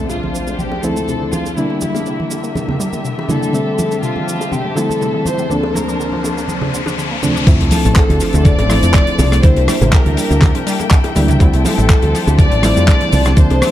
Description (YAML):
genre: nu-disco, nu disco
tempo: 122 BPM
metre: 4/4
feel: straight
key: D minor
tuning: A4 = 436 Hz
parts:
  - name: warm studio violin section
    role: melody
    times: 0.0-13.7 s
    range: E4 to D5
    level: -21 LUFS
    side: left 2 dB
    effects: vintage 12-bit sampler grit, ping-pong delay
  - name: reed electric piano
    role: accompaniment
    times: 0.0-13.7 s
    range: D2 to E5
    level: -20 LUFS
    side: equal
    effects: fast tremolo, low-pass filter, digital delay
  - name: muted studio string section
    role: sustained chords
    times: 0.0-13.7 s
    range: D3 to A5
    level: -25 LUFS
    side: left 3 dB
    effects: sidechain pumping
  - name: wide unison pluck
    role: arpeggios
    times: 0.0-13.7 s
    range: C3 to D4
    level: -25 LUFS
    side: left 2 dB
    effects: auto-pan, sidechain pumping, ping-pong delay
  - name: impact, riser and sub drop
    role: sound effects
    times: 0.0-9.4 s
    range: none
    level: -25 LUFS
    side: equal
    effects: none
  - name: tight funk drum kit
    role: drums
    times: 0.1-13.7 s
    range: cabasa, crash cymbal, handclaps, hi-hat, rim click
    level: -23 LUFS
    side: left 1 dB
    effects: none
  - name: bongos and congas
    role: percussion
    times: 0.1-13.7 s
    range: none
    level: -23 LUFS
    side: right 2 dB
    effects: none
  - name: fingered electric bass with an envelope filter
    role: bass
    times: 7.5-13.6 s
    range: A1 to F2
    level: -14 LUFS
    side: equal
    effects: none
  - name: electronic kick drum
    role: drums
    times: 7.5-13.5 s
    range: none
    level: -10 LUFS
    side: equal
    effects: none
room: light reverb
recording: dark, warm production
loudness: -12 LUFS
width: side -13 dB against mid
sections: 0.0-7.5 A section; 7.5-13.7 B section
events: impact 0.0-1.6, 7.5-9.4; filter sweep on synth arpeggio sound 0.0-7.5; riser 5.2-7.5; drop 7.5-13.7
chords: 0.0 Dm7; 1.6 C7; 3.5 Fmaj9; 5.5 Bbmaj7/D; 7.5 Dm7; 9.4 C7; 11.4 Fmaj9